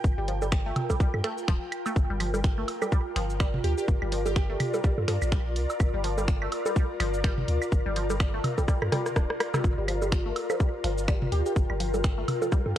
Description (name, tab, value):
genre	minimal techno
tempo	125 BPM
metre	4/4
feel	swing 58% on 16ths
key	G minor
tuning	A4 = 444 Hz
part	punchy sub bass	bass	0.0-12.7 s	D1 to G2	-30 LUFS	equal	sidechain pumping
part	electronic kick drum	drums	0.0-12.6 s	none	-24 LUFS	equal	none
part	garage drum kit	drums	0.0-12.6 s	cabasa, finger snaps, hi-hat, rim click	-35 LUFS	equal	none
part	ethereal airy pad	texture	0.0-12.8 s	F4 to G5	-32 LUFS	left 2 dB	ensemble chorus, built-in reverb, sidechain pumping
part	resonant blip pluck	riff	0.2-12.6 s	F3 to D4	-36 LUFS	equal	phaser, sidechain pumping, tape echo
part	electronic bongos, woodblock and toms	percussion	0.4-12.8 s	none	-32 LUFS	right 2 dB	tape echo
part	plucky unison lead	melody	3.6-4.7, 11.3-11.5 s	G4	-34 LUFS	right 4 dB	wide subtle chorus, tape echo
room	little or no reverb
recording	dry, gritty hardware recording, cassette tape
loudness	-24 LUFS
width	side -12 dB against mid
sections	0.0-12.8 A section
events	drum fill 8.7-9.6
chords	0.0 Gm7